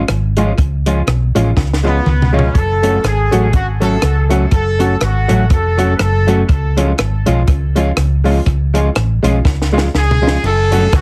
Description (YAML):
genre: ska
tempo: 122 BPM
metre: 4/4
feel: swing 57% on 8ths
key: unclear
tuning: A4 = 440 Hz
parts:
  - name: hollow-body jazz guitar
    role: accompaniment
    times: 0.0-11.0 s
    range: E#3 to F#4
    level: -22 LUFS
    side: equal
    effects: tape echo
  - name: hollow-body short-scale fingered electric bass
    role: bass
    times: 0.1-11.0 s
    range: E#1 to C#2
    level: -17 LUFS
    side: equal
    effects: none
  - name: compact cocktail drum kit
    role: drums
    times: 0.1-11.0 s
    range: crash cymbal, hi-hat, kick drum, rim click, snare drum, toms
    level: -19 LUFS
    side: equal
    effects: tape echo
  - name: clear upright piano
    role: stabs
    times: 0.4-10.8 s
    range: G#3 to F#4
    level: -23 LUFS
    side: equal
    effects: none
  - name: warm horn section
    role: melody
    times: 1.9-6.4, 10.0-11.0 s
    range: B3 to B4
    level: -21 LUFS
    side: equal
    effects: tape echo
room: moderate club reverb, RT60 0.5 s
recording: heavily compressed radio sound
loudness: -14 LUFS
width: mono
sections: 0.0-10.4 A section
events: drum fill 1.6-2.6, 9.4-10.4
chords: 0.0 C#; 2.6 F#m; 6.5 C#; 10.4 F#m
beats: 0.09 | 0.58 1.07 1.57 2.06 | 2.55 3.04 3.54 4.03 | 4.52 5.01 5.51 6.00 | 6.49 6.98 7.48 7.97 | 8.46 8.96 9.45 9.94 | 10.43 10.93